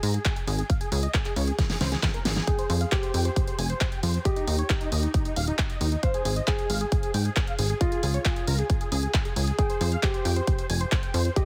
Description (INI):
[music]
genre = uplifting trance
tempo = 135 BPM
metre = 4/4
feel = straight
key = F minor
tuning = A4 = 439 Hz
[part]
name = big supersaw lead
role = melody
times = 0.0-11.4 s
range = Eb4 to Bb5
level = -36 LUFS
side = equal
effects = phaser, sidechain pumping, low-pass filter, dub echo
[part]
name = plucky analog bass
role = bass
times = 0.0-11.3 s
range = Eb1 to Ab2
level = -28 LUFS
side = equal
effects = sidechain pumping
[part]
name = big-room dance drum kit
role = drums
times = 0.0-11.4 s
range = handclaps, hi-hat, snare drum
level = -34 LUFS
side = equal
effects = none
[part]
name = electronic kick drum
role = drums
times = 0.3-11.4 s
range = none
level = -28 LUFS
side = equal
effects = none
[part]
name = dark baby grand piano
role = second line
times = 2.5-11.4 s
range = F4 to C5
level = -35 LUFS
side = equal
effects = delay
[sound]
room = little or no reverb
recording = heavily compressed radio sound, multiband compression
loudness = -26 LUFS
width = mono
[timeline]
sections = 0.0-11.4 A section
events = drum fill 1.6-2.5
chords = 0.0 Absus2; 0.7 Db5; 2.5 Fmadd9; 4.3 Eb; 6.0 Ab; 7.8 Db; 9.6 Fmadd9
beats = 0.25 | 0.70 1.14 1.59 2.03 | 2.48 2.92 3.36 3.81 | 4.25 4.70 5.14 5.59 | 6.03 6.47 6.92 7.36 | 7.81 8.25 8.70 9.14 | 9.59 10.03 10.47 10.92 | 11.36